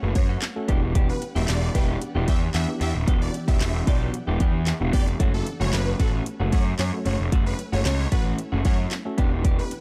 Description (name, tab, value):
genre	dance-pop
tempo	113 BPM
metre	4/4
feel	straight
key	E dorian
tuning	A4 = 435 Hz
part	tine electric piano	accompaniment	0.0-9.7 s	A3 to B4	-35 LUFS	equal	sidechain pumping
part	ethereal airy pad	sustained chords	0.0-9.8 s	E3 to F#5	-40 LUFS	equal	none
part	clean electric guitar	riff	0.0-9.8 s	A3 to G4	-38 LUFS	equal	lush chorus
part	fuzz picked electric bass	bass	0.0-9.6 s	D#1 to F#2	-27 LUFS	equal	overdrive, sidechain pumping
part	supersaw chords	melody	0.2-9.7 s	A4 to E5	-37 LUFS	equal	phaser, sidechain pumping, tape echo
part	house drum kit	drums	0.2-9.8 s	handclaps, hi-hat, kick drum, snare drum	-25 LUFS	equal	none
room	digital ambience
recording	dark, warm production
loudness	-23 LUFS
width	mono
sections	0.0-9.8 A section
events	none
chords	0.0 F#m; 0.7 Em7; 5.2 F#m; 9.2 Em7